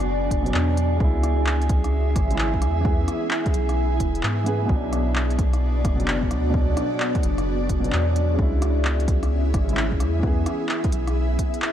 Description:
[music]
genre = future garage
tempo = 130 BPM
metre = 4/4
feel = swing 65% on 16ths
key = B dorian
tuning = A4 = 440 Hz
[part]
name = dark upright piano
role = accompaniment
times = 0.0-11.7 s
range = B2 to G#4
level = -29 LUFS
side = right 1 dB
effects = sidechain pumping, analog delay
[part]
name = ethereal airy pad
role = sustained chords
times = 0.0-11.7 s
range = B3 to E5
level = -27 LUFS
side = left 1 dB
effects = ensemble chorus, built-in reverb, vintage 12-bit sampler grit, sidechain pumping
[part]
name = soft dub sub bass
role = bass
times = 0.0-11.4 s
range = E1 to G#2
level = -23 LUFS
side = equal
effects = sidechain pumping
[part]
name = deep house drum kit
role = drums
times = 0.0-11.7 s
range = handclaps, hi-hat, rim click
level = -29 LUFS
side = equal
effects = none
[part]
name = drifting glass-harmonics texture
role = texture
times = 0.0-11.7 s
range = G#4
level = -35 LUFS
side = right 7 dB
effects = chorus, built-in reverb
[part]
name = electronic kick drum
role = drums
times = 0.3-11.5 s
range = none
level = -24 LUFS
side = equal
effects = none
[sound]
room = light reverb, digital ambience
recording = none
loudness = -20 LUFS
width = side -10 dB against mid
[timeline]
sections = 0.0-11.7 A section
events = none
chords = 0.0 Bm; 1.0 C#m; 2.9 E; 4.7 Bm; 8.4 C#m; 10.2 E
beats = 0.08 0.54 | 1.00 1.47 1.93 2.39 | 2.85 3.31 3.77 4.23 | 4.70 5.16 5.62 6.08 | 6.54 7.00 7.46 7.93 | 8.39 8.85 9.31 9.77 | 10.23 10.70 11.16 11.62

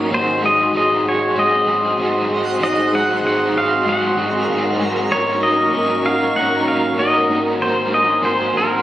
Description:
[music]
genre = dream pop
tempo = 96 BPM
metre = 4/4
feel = straight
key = Ab mixolydian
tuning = A4 = 439 Hz
[part]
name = crunchy overdriven guitar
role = accompaniment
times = 0.0-8.8 s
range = Ab2 to Bb4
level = -22 LUFS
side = right 1 dB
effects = tremolo, ensemble chorus
[part]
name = hollow soft pad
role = sustained chords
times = 0.0-8.8 s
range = Gb4 to Db6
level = -21 LUFS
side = equal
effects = chorus
[part]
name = electric guitar at the edge of break-up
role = arpeggios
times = 0.0-8.8 s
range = Eb3 to Gb4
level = -25 LUFS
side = left 2 dB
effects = lush chorus, slapback echo
[part]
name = vintage muted fingered electric bass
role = bass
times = 0.0-8.8 s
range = Ab1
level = -35 LUFS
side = right 1 dB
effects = none
[part]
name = pedal steel guitar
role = melody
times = 0.1-8.8 s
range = Bb4 to Gb5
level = -18 LUFS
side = equal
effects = slapback echo
[part]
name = twinkling granular texture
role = texture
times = 1.9-5.2 s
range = Bb4 to Gb5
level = -30 LUFS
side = equal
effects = built-in reverb, slapback echo
[sound]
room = moderate plate reverb, RT60 3.1 s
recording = recorded on a phone in the room, studio reverb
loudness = -15 LUFS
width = side -13 dB against mid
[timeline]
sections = 0.0-8.8 A section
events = none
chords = 0.1 Ab7; 5.1 Gb6/Ab; 7.6 Ab9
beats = | 0.10 0.72 1.35 1.98 | 2.60 3.23 3.85 4.47 | 5.10 5.72 6.35 6.97 | 7.60 8.22

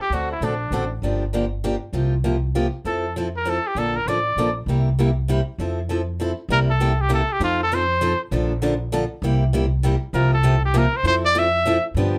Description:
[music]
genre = acoustic string swing (jazz manouche)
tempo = 198 BPM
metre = 3/4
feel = swing 60% on 8ths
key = F major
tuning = A4 = 441 Hz
[part]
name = bright trumpet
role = melody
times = 0.0-11.9 s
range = D4 to E5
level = -24 LUFS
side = equal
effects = none
[part]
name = picked steel-string acoustic guitar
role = accompaniment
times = 0.1-12.2 s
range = C3 to A4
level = -26 LUFS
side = equal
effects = none
[part]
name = upright bass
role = bass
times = 0.1-12.2 s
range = G1 to G2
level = -25 LUFS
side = equal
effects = none
[sound]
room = moderate small room reverb, RT60 0.5 s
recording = none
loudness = -21 LUFS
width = mono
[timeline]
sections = 0.0-6.5 A section; 6.5-12.2 B section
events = none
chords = 0.1 D7; 1.0 Gm7; 1.9 C7sus4; 2.8 Fmaj7; 3.8 Bbmaj7; 4.7 C7; 5.6 Fmaj7; 6.5 C7; 7.4 F7; 8.3 Bbmaj7; 9.2 C7; 10.1 C7sus4; 11.0 Fmaj7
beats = | 0.11 0.41 0.72 | 1.02 1.33 1.63 | 1.93 2.24 2.54 | 2.85 3.15 3.46 | 3.76 4.06 4.37 | 4.67 4.97 5.28 | 5.58 5.89 6.19 | 6.49 6.80 7.10 | 7.40 7.71 8.01 | 8.31 8.62 8.92 | 9.22 9.53 9.83 | 10.13 10.44 10.74 | 11.04 11.34 11.65 | 11.95

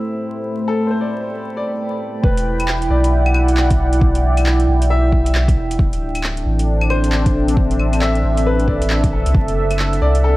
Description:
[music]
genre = future garage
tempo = 135 BPM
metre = 4/4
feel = swing 62% on 16ths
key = E minor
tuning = A4 = 440 Hz
[part]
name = bright upright piano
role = accompaniment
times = 0.0-10.4 s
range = E4 to E5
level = -25 LUFS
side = left 2 dB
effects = sidechain pumping, tape echo
[part]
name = dark analog pad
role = sustained chords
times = 0.0-10.4 s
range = A3 to B5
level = -20 LUFS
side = equal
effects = chorus, sidechain pumping
[part]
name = warm sub bass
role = bass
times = 2.2-10.4 s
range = D1 to C2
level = -17 LUFS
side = equal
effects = sidechain pumping
[part]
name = electronic kick drum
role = drums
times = 2.2-9.5 s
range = none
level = -17 LUFS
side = equal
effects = overdrive, studio reverb
[part]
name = deep house drum kit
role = drums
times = 2.4-10.2 s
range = claves, handclaps, hi-hat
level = -25 LUFS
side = left 1 dB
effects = overdrive, low-pass filter on hats, studio reverb, low-pass filter on perc, low-pass filter on snare
[sound]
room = light reverb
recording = vinyl crackle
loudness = -14 LUFS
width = side -18 dB against mid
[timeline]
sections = 0.0-2.2 A section; 2.2-10.4 B section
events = none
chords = 0.0 Am7; 2.2 Em7; 5.8 D7sus4; 9.3 F#m7b5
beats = 0.01 | 0.46 0.90 1.35 1.79 | 2.24 2.68 3.13 3.57 | 4.01 4.46 4.90 5.35 | 5.79 6.24 6.68 7.13 | 7.57 8.02 8.46 8.90 | 9.35 9.79 10.24

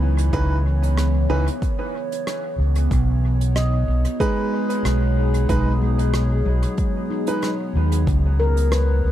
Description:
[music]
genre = ambient dub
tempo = 93 BPM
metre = 4/4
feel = swing 53% on 16ths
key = unclear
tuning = A4 = 440 Hz
[part]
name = warbly tape-like pad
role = sustained chords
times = 0.0-9.1 s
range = B2 to C#5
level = -27 LUFS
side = equal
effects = chorus, built-in reverb, phaser
[part]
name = handpan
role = arpeggios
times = 0.0-9.1 s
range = F#3 to D#5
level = -29 LUFS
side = left 3 dB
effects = dub echo
[part]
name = clear upright piano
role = stabs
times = 0.0-7.5 s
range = E3 to B4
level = -27 LUFS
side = right 3 dB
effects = dub echo
[part]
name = overdriven fingered electric bass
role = bass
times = 0.0-9.1 s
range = B1 to D#2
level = -18 LUFS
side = equal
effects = none
[part]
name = soft brush drum kit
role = drums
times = 0.2-8.9 s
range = hi-hat, rim click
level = -33 LUFS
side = right 2 dB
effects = dub echo
[part]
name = electronic kick drum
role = drums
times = 0.3-8.2 s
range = none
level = -23 LUFS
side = equal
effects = overdrive
[sound]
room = small room ambience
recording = none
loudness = -18 LUFS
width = side -12 dB against mid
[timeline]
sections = 0.0-9.1 A section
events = none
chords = 0.0 C#m9; 2.9 B6; 8.1 C#m9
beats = | 0.33 0.98 1.62 2.27 | 2.91 3.56 4.20 4.85 | 5.49 6.14 6.78 7.43 | 8.07 8.72

